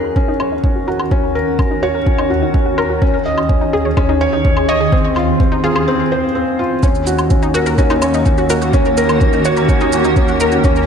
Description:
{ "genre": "piano and strings electronica", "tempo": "126 BPM", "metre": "4/4", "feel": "straight", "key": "Eb dorian", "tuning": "A4 = 439 Hz", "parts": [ { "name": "granular cloud pad", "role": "sustained chords", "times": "0.0-10.9 s", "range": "Eb2 to Ab4", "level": "-20 LUFS", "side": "right 1 dB", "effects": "built-in reverb, sidechain pumping" }, { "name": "analog pluck", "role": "arpeggios", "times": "0.0-10.7 s", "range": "C4 to Db5", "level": "-23 LUFS", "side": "left 2 dB", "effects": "chorus, sidechain pumping, digital delay" }, { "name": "felt-muted upright piano", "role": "riff", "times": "0.0-10.8 s", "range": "C4 to Eb5", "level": "-16 LUFS", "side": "left 1 dB", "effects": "digital delay" }, { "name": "electronic kick drum", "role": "drums", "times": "0.2-10.7 s", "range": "none", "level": "-15 LUFS", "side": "right 1 dB", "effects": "overdrive" }, { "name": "woodblock and shaker", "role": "drums", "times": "0.4-10.9 s", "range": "none", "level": "-25 LUFS", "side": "equal", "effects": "none" }, { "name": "rich symphonic double bass section", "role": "bass", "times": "6.8-10.9 s", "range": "Eb2", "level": "-19 LUFS", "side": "right 1 dB", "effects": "sidechain pumping" } ], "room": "moderate echo chamber reverb, RT60 1.9 s, small room ambience", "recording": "none", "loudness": "-12 LUFS", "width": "side -7 dB against mid", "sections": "0.0-6.8 A section; 6.8-10.9 B section", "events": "build-up 0.0-6.8; filter sweep on ambient pad 0.0-6.8; filter sweep on synth arpeggio sound 0.0-6.8; break 5.9-6.8; drop 6.8-10.9", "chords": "0.0 Ebm7; 3.0 Absus4/Eb; 4.9 Fm7; 6.8 Ebm7", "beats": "0.16 0.64 | 1.12 1.59 2.07 2.54 | 3.02 3.50 3.97 4.45 | 4.92 5.40 5.88 6.35 | 6.83 7.31 7.78 8.26 | 8.73 9.21 9.69 10.16 | 10.64" }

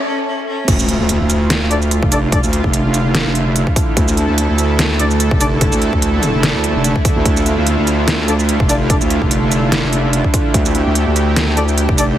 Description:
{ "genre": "heavy wobble dubstep", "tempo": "146 BPM", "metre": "4/4", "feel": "swing 55% on 16ths, half-time", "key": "D minor", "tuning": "A4 = 438 Hz", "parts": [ { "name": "clear cello", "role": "melody", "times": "0.0-0.7 s", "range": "C#4", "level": "-24 LUFS", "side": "left 3 dB", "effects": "ping-pong delay" }, { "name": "lush unison pad", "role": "sustained chords", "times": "0.7-12.2 s", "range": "D3 to A4", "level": "-20 LUFS", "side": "right 1 dB", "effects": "chorus, sidechain pumping" }, { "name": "wobble bass", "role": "bass", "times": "0.7-12.2 s", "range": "F1 to D2", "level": "-16 LUFS", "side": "equal", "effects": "chorus, overdrive" }, { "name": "dubstep drum kit", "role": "drums", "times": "0.7-12.1 s", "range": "crash cymbal, hi-hat, shaker, snare drum", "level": "-19 LUFS", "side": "right 1 dB", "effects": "small room ambience" }, { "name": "electronic kick drum", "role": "drums", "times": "0.7-12.0 s", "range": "none", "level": "-16 LUFS", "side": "equal", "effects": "small room ambience" }, { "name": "impact", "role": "sound effects", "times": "0.7-2.3 s", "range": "none", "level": "-26 LUFS", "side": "equal", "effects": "none" }, { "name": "warbly tape-like pad", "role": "texture", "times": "0.7-12.2 s", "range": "D4", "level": "-25 LUFS", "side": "right 3 dB", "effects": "chorus, built-in reverb, sidechain pumping" }, { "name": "warm brass ensemble", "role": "stabs", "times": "1.7-2.4, 5.0-5.5, 8.3-9.0, 11.6-12.0 s", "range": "D4 to D5", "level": "-22 LUFS", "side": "left 2 dB", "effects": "ping-pong delay" } ], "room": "light reverb, digital ambience", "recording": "heavily compressed radio sound, multiband compression, high-pass filter", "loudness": "-12 LUFS", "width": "side -12 dB against mid", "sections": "0.7-12.2 A section", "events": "break 0.0-0.7; drop 0.7-12.2; impact 0.7-2.3", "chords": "0.0 N.C.; 0.7 Dmadd9", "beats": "0.27 | 0.68 1.09 1.50 1.91 | 2.32 2.73 3.15 3.56 | 3.97 4.38 4.79 5.20 | 5.61 6.02 6.43 6.84 | 7.25 7.67 8.08 8.49 | 8.90 9.31 9.72 10.13 | 10.54 10.95 11.37 11.78" }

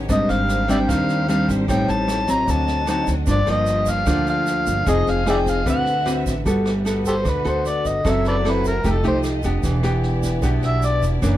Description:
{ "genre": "bossa nova", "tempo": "151 BPM", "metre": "4/4", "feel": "straight", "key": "G major from 6.5 s", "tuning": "A4 = 440 Hz", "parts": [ { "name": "nylon-string guitar", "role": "accompaniment", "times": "0.0-11.4 s", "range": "F#2 to B4", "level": "-21 LUFS", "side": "left 1 dB", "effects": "none" }, { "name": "rich symphonic violin section", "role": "sustained chords", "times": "0.0-11.4 s", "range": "A3 to E5", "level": "-32 LUFS", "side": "equal", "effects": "none" }, { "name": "upright bass", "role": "bass", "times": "0.0-11.4 s", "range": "E1 to Eb2", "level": "-24 LUFS", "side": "right 1 dB", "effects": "none" }, { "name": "overdriven harmonica", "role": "melody", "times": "0.1-11.0 s", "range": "G4 to Bb5", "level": "-22 LUFS", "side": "equal", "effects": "none" }, { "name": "jazz brush drum kit", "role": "drums", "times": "0.1-11.3 s", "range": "kick drum, rim click, snare drum", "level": "-29 LUFS", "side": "right 1 dB", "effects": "none" }, { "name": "egg shaker", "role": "percussion", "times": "0.1-11.4 s", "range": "none", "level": "-39 LUFS", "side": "right 10 dB", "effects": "none" } ], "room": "light reverb", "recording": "dark, warm production", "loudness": "-17 LUFS", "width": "side -13 dB against mid", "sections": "0.0-6.5 A section; 6.5-11.4 B section", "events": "harmonica solo 6.5-11.4", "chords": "0.1 Abmaj9#11; 1.7 Am7b5; 2.5 D7b9; 3.3 Gm7; 4.9 Fm7; 5.7 D13; 6.5 Gmaj9; 8.1 F#m7b5; 8.8 F9; 9.6 Em7", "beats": "| 0.09 0.49 0.89 1.28 | 1.68 2.08 2.48 2.88 | 3.28 3.68 4.07 4.47 | 4.87 5.27 5.67 6.06 | 6.46 6.86 7.26 7.65 | 8.05 8.45 8.85 9.24 | 9.64 10.04 10.43 10.83 | 11.23" }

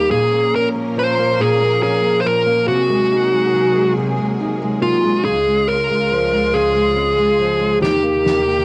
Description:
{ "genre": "six-eight pop ballad", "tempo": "47 BPM (dotted quarters)", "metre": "6/8", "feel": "straight", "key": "Ab major", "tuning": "A4 = 441 Hz", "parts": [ { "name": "dark smooth lead guitar", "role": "melody", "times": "0.0-8.6 s", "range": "F4 to C5", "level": "-18 LUFS", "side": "equal", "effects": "overdrive" }, { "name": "fingerpicked steel-string acoustic guitar", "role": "accompaniment", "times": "0.0-8.6 s", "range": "Bb2 to Eb4", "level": "-24 LUFS", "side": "equal", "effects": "none" }, { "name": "bright studio string section", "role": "sustained chords", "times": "0.0-8.6 s", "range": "Db2 to Bb4", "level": "-26 LUFS", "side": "equal", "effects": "none" }, { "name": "snare drum", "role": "drums", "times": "7.8-8.5 s", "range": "none", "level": "-27 LUFS", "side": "equal", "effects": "none" } ], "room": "wet small room reverb, RT60 0.5 s", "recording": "home recording on cassette", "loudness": "-17 LUFS", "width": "mono", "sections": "0.0-8.6 A section", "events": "drum fill 7.8-8.6", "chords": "0.1 Bbm; 2.7 Ab7/C; 5.2 Db; 7.8 Eb", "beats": "| 0.12 1.40 | 2.68 3.97 | 5.25 6.53 | 7.82" }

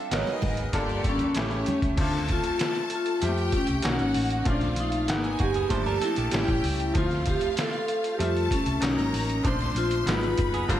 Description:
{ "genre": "lush 1970s-style soul", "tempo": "96 BPM", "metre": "4/4", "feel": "straight", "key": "unclear", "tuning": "A4 = 441 Hz", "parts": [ { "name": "vibraphone with medium mallets", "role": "melody", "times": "0.0-10.8 s", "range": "C#4 to F5", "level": "-28 LUFS", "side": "left 1 dB", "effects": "tape echo" }, { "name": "warm symphonic violin section", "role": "second line", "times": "0.0-10.8 s", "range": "G#3 to C6", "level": "-33 LUFS", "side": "left 1 dB", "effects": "none" }, { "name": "bright concert grand piano", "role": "accompaniment", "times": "0.0-10.8 s", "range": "D3 to F#5", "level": "-32 LUFS", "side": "left 1 dB", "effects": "none" }, { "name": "warm horn section", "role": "stabs", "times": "0.1-1.7, 10.7-10.8 s", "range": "Bb2 to F4", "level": "-37 LUFS", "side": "equal", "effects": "none" }, { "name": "hollow-body short-scale fingered electric bass", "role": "bass", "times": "0.1-10.8 s", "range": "F#1 to F2", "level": "-30 LUFS", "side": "equal", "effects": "none" }, { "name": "trip hop sampler-style drum kit", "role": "drums", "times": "0.1-10.8 s", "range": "crash cymbal, hi-hat, kick drum, snare drum", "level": "-30 LUFS", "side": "equal", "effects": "none" }, { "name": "congas", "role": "percussion", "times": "0.1-1.8 s", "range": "none", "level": "-37 LUFS", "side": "right 4 dB", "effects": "none" }, { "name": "semi-hollow electric guitar", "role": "riff", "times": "5.4-6.5, 10.5-10.8 s", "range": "Bb3 to C5", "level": "-34 LUFS", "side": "right 8 dB", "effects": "none" } ], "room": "light reverb, small room ambience", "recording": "none", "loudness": "-23 LUFS", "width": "side -12 dB against mid", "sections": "0.0-2.0 A section; 2.0-10.8 B section", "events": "vibraphone solo 0.0-2.0; band accent 9.4-10.8", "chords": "0.1 G#m7; 0.7 Gm7; 1.4 A7; 2.0 Dm7; 3.2 Fmaj9; 3.8 Bmaj9; 4.5 Bbmaj9; 5.1 G#m7; 5.7 Gm7; 6.3 A7; 7.0 Dm7; 8.2 Fmaj9; 8.8 Bmaj9; 9.4 Bbmaj9; 10.1 G#m7", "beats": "0.11 0.74 1.36 | 1.98 2.60 3.23 3.85 | 4.47 5.09 5.71 6.34 | 6.96 7.58 8.20 8.82 | 9.45 10.07 10.69" }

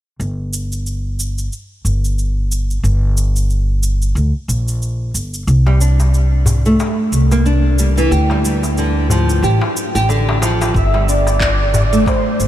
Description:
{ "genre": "organic downtempo", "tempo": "91 BPM", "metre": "4/4", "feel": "swing 57% on 16ths", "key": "G dorian", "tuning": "A4 = 437 Hz", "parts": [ { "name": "upright bass", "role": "bass", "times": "0.2-12.5 s", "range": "G1 to D2", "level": "-15 LUFS", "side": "equal", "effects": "none" }, { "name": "electronic shaker and handclaps", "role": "drums", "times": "0.2-12.5 s", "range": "none", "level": "-25 LUFS", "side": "right 1 dB", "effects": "none" }, { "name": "nylon-string guitar", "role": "arpeggios", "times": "5.7-12.5 s", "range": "D3 to G4", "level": "-17 LUFS", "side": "equal", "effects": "wide subtle chorus, ping-pong delay" }, { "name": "darbuka", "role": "percussion", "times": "5.7-12.2 s", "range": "none", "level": "-23 LUFS", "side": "left 2 dB", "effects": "none" }, { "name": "electronic kick drum", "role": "drums", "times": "10.7-12.2 s", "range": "none", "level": "-20 LUFS", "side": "equal", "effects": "none" }, { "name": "breathy flute-like synth lead", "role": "melody", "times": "10.8-12.5 s", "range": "C5 to E5", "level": "-18 LUFS", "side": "right 1 dB", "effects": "ensemble chorus, ping-pong delay" } ], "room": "light reverb, small room ambience", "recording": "none", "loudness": "-13 LUFS", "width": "side -12 dB against mid", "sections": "0.2-10.7 A section; 10.7-12.5 B section", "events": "filter sweep on upright bass 0.2-10.7", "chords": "0.2 N.C.; 8.1 Dm; 10.7 Gsus4", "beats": "| 0.20 0.86 1.52 2.18 | 2.84 3.50 4.16 4.82 | 5.47 6.13 6.79 7.45 | 8.11 8.77 9.43 10.09 | 10.75 11.41 12.07" }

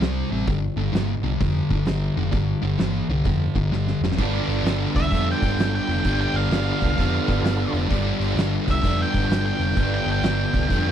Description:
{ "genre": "blues rock power trio and southern rock", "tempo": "129 BPM", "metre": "4/4", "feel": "swing 65% on 8ths", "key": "G mixolydian", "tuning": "A4 = 440 Hz", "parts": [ { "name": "thick fuzz guitar", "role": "riff", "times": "0.0-10.9 s", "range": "G2 to D4", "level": "-24 LUFS", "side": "left 1 dB", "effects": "distortion" }, { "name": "overdriven picked electric bass", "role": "bass", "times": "0.0-10.9 s", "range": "F1 to F2", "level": "-25 LUFS", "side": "equal", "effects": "none" }, { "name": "oversized low-tuned drum kit", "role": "drums", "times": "0.0-10.9 s", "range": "crash cymbal, hi-hat, kick drum, snare drum", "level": "-26 LUFS", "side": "right 1 dB", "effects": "none" }, { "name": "overdriven tonewheel organ", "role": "sustained chords", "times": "4.2-10.9 s", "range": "B3 to B4", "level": "-33 LUFS", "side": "right 5 dB", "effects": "chorus vibrato, fast rotary speaker" }, { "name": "octave-fuzz lead guitar", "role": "melody", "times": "5.0-10.9 s", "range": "E5 to G5", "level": "-27 LUFS", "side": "right 1 dB", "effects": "distortion, slapback echo" } ], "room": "little or no reverb", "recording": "dry, close 1970s-style studio recording", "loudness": "-20 LUFS", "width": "side -9 dB against mid", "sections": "0.0-4.2 A section; 4.2-10.9 B section", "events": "drum fill 3.7-4.2; lead electric guitar solo 4.2-10.9", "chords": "0.5 G5; 4.2 G7", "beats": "0.02 | 0.48 0.94 1.41 1.87 | 2.34 2.80 3.26 3.73 | 4.19 4.66 5.12 5.59 | 6.05 6.52 6.98 7.45 | 7.92 8.38 8.85 9.31 | 9.78 10.25 10.72" }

